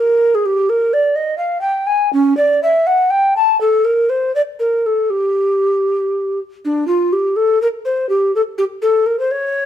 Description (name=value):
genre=classical, baroque-style fantasia for unaccompanied recorder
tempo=76-85 BPM (dotted quarters)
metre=6/8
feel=rubato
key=G minor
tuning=A4 = 438 Hz
part: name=mellow hollow tenor recorder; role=solo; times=0.0-9.7 s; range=C#4 to A5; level=-13 LUFS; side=equal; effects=none
room=moderate stone room reverb, RT60 1.0 s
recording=minimal, uncompressed stereo recording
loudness=-14 LUFS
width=side -10 dB against mid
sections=0.0-6.6 A section; 6.6-9.7 B section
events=none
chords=none